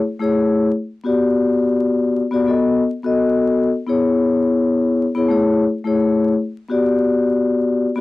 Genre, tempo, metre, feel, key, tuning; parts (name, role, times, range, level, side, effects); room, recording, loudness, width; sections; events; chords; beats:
hip hop; 85 BPM; 4/4; swing 58% on 16ths; A4 = 440 Hz
vibraphone with soft mallets; solo; 0.2-8.0 s; A3 to D#5; -15 LUFS; left 2 dB; cassette tape
light reverb; home recording on cassette, vinyl crackle; -15 LUFS; side -17 dB against mid
0.0-8.0 A section
0.0 Amaj7; 1.1 Gmaj7; 2.5 B7; 3.9 E6; 5.3 Amaj7; 6.7 Gmaj7
0.36 | 1.07 1.77 2.48 3.19 | 3.89 4.60 5.30 6.01 | 6.71 7.42